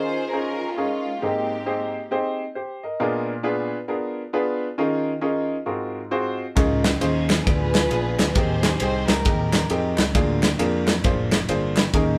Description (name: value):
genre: uptempo gospel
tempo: 134 BPM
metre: 4/4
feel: swing 63% on 8ths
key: Ab major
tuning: A4 = 442 Hz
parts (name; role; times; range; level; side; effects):
- warm studio string section; melody; 0.0-2.1, 7.0-10.0 s; Ab3 to C5; -30 LUFS; equal; none
- warm grand piano; accompaniment; 0.0-12.2 s; Ab2 to Eb5; -26 LUFS; equal; none
- fingered electric bass; bass; 6.6-12.2 s; F1 to F2; -28 LUFS; equal; none
- modern studio drum kit; drums; 6.6-12.1 s; kick drum, ride cymbal, snare drum; -24 LUFS; equal; none
- group handclap; percussion; 6.9-11.8 s; none; -34 LUFS; equal; none
room: moderate studio reverb, RT60 0.5 s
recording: band playing live in one room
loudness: -23 LUFS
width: mono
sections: 0.0-12.2 A section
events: none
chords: 0.0 Eb9sus4; 1.2 Abmaj9; 3.0 Bb7b9; 4.8 Eb9sus4; 5.7 Ab13; 6.6 Db69; 7.5 Ddim7; 8.4 Abmaj9; 10.1 Bb7/D